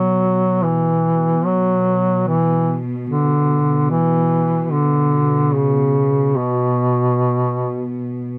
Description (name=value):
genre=caucasian folk, Caucasian lament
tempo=free time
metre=none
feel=none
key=B minor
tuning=A4 = 439 Hz
part: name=warm duduk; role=melody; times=0.0-8.1 s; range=B2 to F#3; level=-18 LUFS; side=equal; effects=none
part: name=warm chamber string section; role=drone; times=0.0-8.4 s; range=B2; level=-27 LUFS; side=equal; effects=none
room=little or no reverb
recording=dry, close 1970s-style studio recording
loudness=-18 LUFS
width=mono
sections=0.0-8.4 A section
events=none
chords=none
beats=free time